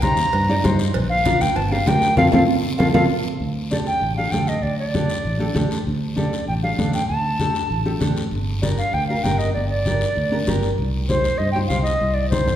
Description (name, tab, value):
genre	latin, cumbia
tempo	195 BPM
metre	4/4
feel	straight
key	unclear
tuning	A4 = 440 Hz
part	reedy silver concert flute	melody	0.0-12.6 s	C5 to Bb5	-22 LUFS	equal	none
part	nylon-string guitar	accompaniment	0.0-12.5 s	C4 to D5	-24 LUFS	equal	none
part	fingered electric bass	bass	0.0-12.5 s	G1 to G2	-23 LUFS	equal	none
part	congas	percussion	0.0-12.5 s	none	-26 LUFS	left 1 dB	none
part	cowbell and timbales	percussion	0.0-3.0 s	none	-30 LUFS	right 4 dB	none
part	guiro	percussion	0.0-12.6 s	none	-35 LUFS	left 4 dB	none
room	wet recital hall reverb, RT60 1.6 s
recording	recorded in a church or concert hall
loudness	-18 LUFS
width	side -11 dB against mid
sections	0.0-3.4 A section; 3.4-12.6 B section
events	band accent 2.2-3.4; drum fill 2.6-3.4, 12.3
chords	0.0 Cm7; 0.9 Bb; 1.6 Gm; 2.2 F; 3.4 Dsus4; 8.3 Gm; 10.8 Cm